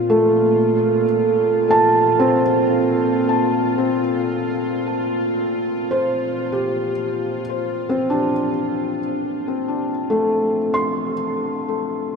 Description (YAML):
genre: ambient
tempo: free time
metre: none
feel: none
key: Bb major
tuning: A4 = 440 Hz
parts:
  - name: felt-muted upright piano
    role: arpeggios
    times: 0.0-12.2 s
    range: A3 to C6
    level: -18 LUFS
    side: equal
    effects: ping-pong delay
  - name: bowed-like drone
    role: drone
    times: 0.0-12.2 s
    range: Bb2 to F4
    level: -23 LUFS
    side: equal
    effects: built-in reverb
room: wet huge ambient reverb, RT60 8.0 s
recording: none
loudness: -17 LUFS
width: side -5 dB against mid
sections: 0.0-12.2 A section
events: fade-out on synth drone 0.0-12.2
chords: 0.0 Bbmaj7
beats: free time